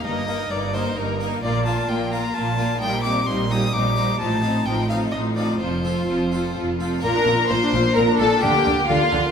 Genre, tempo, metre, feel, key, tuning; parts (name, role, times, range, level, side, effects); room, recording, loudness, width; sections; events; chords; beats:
classical, baroque-style concerto movement with solo episodes; 130 BPM; 3/4; straight; Bb major; A4 = 440 Hz
clear studio violin section; melody; 0.0-9.3 s; A4 to C6; -28 LUFS; left 4 dB
clear violin; melody; 0.0-9.3 s; F4 to Eb6; -26 LUFS; left 3 dB
rich chamber violin section; second line; 0.0-9.3 s; Eb4 to C5; -26 LUFS; left 2 dB
harpsichord; accompaniment; 0.0-9.3 s; F2 to Bb4; -28 LUFS; equal
rich symphonic viola section; accompaniment; 0.0-9.3 s; F3 to F4; -27 LUFS; equal
rich chamber double bass section; bass; 0.0-9.2 s; F1 to D2; -27 LUFS; right 4 dB
warm chamber cello section; bass; 0.0-9.2 s; F2 to D3; -27 LUFS; right 2 dB
wet recital hall reverb, RT60 1.5 s; minimal, uncompressed stereo recording; -18 LUFS; side -7 dB against mid
0.0-7.0 A section; 7.0-9.3 B section
0.0 Eb/G; 1.4 Bb5; 2.8 Cm7/Bb; 4.2 F7/A; 5.6 F; 7.0 Bb; 8.4 Bb/D
| 0.05 0.51 0.97 | 1.43 1.89 2.35 | 2.81 3.27 3.73 | 4.19 4.66 5.12 | 5.60 6.08 6.56 | 7.03 7.50 7.96 | 8.43 8.89